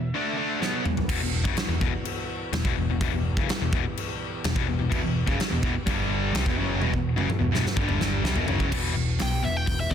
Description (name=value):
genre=hard rock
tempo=126 BPM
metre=4/4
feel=straight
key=E minor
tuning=A4 = 439 Hz
part: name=high-gain lead guitar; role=melody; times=0.0-0.6, 9.2-9.9 s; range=D5 to G5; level=-31 LUFS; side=equal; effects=distortion, slapback echo
part: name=tonewheel organ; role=sustained chords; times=0.0-9.9 s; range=E3 to E5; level=-40 LUFS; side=right 1 dB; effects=slow rotary speaker, overdrive, chorus vibrato
part: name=distorted electric guitar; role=riff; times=0.0-1.1, 4.9-8.7 s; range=E2 to D4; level=-30 LUFS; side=right 12 dB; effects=distortion
part: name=overdriven electric guitar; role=riff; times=0.0-9.9 s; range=E2 to D4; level=-29 LUFS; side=left 12 dB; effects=none
part: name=big rock drum kit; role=drums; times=0.6-9.9 s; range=crash cymbal, hi-hat, kick drum, snare drum, toms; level=-27 LUFS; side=equal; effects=none
part: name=overdriven picked electric bass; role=bass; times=1.1-9.9 s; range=E1 to D2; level=-28 LUFS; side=equal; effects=none
room=studio reverb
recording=dense, heavily limited modern master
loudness=-23 LUFS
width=side -8 dB against mid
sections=0.0-1.1 A section; 1.1-8.7 B section; 8.7-9.9 C section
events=break 0.0-1.1; drum fill 0.6-1.1, 6.8-8.7; lead electric guitar solo 8.7-9.9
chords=0.1 D5; 0.6 B5; 1.1 Em; 5.9 G5; 6.3 Em; 7.8 G5; 8.2 Em; 8.7 E5